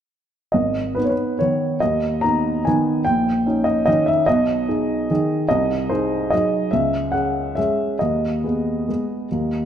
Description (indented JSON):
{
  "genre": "classical, piano waltz",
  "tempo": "134-154 BPM",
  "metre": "3/4",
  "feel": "rubato",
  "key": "G# minor",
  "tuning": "A4 = 440 Hz",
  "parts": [
    { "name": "warm upright piano", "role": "solo", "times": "0.5-9.7 s", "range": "G#1 to A#5", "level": "-18 LUFS", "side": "equal", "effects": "none" }
  ],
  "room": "wet recital hall reverb, RT60 1.8 s",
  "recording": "dark, warm production",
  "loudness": "-18 LUFS",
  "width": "side -9 dB against mid",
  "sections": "0.5-9.7 A section",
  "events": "none",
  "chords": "0.5 G#m; 3.1 D#7/A#; 4.3 G#m/B; 5.5 G#7/B#; 6.7 C#m; 8.0 G#m/D#",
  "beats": "| 0.54 0.97 1.41 | 1.82 2.23 2.66 | 3.06 3.46 3.88 | 4.28 4.68 5.10 | 5.50 5.90 6.32 | 6.73 7.14 7.57 | 8.01 8.44 8.89 | 9.32"
}